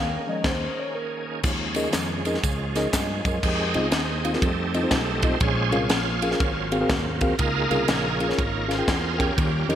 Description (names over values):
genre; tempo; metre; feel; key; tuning
uptempo gospel; 121 BPM; 4/4; swing 63% on 8ths; unclear; A4 = 440 Hz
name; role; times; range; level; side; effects
mellow tine electric piano; accompaniment; 0.0-9.8 s; Ab2 to Ab5; -27 LUFS; left 1 dB; none
bright tonewheel organ; sustained chords; 0.0-9.8 s; Eb3 to F5; -27 LUFS; right 3 dB; slow rotary speaker, chorus vibrato
fingered electric bass; bass; 0.0-9.8 s; Ab1 to G2; -29 LUFS; equal; none
tight funk drum kit; drums; 0.4-9.8 s; crash cymbal, kick drum, ride cymbal, snare drum; -26 LUFS; equal; gated reverb
tambourine and handclaps; percussion; 1.4-3.3 s; none; -35 LUFS; right 2 dB; none
room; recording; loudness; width
moderate lush hall reverb, RT60 2.5 s; bright 1980s-style digital production; -21 LUFS; side -10 dB against mid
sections
0.0-1.4 A section; 1.4-3.4 B section; 3.4-9.8 C section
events
band accent 0.0-1.4; tine electric piano solo 0.0-1.4; tonewheel organ solo 1.4-3.4, 3.4-9.8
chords
0.0 Eb7sus4; 3.4 Fm7; 4.4 F7; 5.4 Bbm7; 6.4 Ab13; 7.4 Db6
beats
0.45 0.94 | 1.44 1.94 2.44 2.93 | 3.43 3.92 4.42 4.92 | 5.41 5.91 6.40 6.90 | 7.39 7.89 8.38 8.88 | 9.38